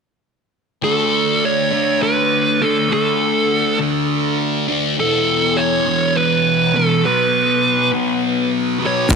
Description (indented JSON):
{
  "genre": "psychedelic rock",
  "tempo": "203 BPM (eighths)",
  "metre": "7/8",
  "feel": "straight",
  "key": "unclear",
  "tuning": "A4 = 440 Hz",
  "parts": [
    { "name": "fuzz lead guitar", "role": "melody", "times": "0.8-9.1 s", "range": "A4 to C#5", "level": "-24 LUFS", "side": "right 3 dB", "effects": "none" },
    { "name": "thick fuzz guitar", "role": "riff", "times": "0.8-9.2 s", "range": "E2 to D4", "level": "-21 LUFS", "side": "equal", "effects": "distortion, phaser" },
    { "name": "fuzz fingered electric bass", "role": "bass", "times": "9.1-9.2 s", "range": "D2", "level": "-18 LUFS", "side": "left 5 dB", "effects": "overdrive" },
    { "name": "cloth-damped thuddy drum kit", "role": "drums", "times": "9.1-9.2 s", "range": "hi-hat, kick drum", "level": "-12 LUFS", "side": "right 1 dB", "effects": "none" },
    { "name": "egg shaker", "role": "percussion", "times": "9.1-9.2 s", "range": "none", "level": "-30 LUFS", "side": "left 33 dB", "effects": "none" }
  ],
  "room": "studio ambience",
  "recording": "1960s-style stereo",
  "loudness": "-14 LUFS",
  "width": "side -5 dB against mid",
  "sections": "0.8-9.2 A section",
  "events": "none",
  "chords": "0.8 D5; 5.0 Esus4; 7.0 B5"
}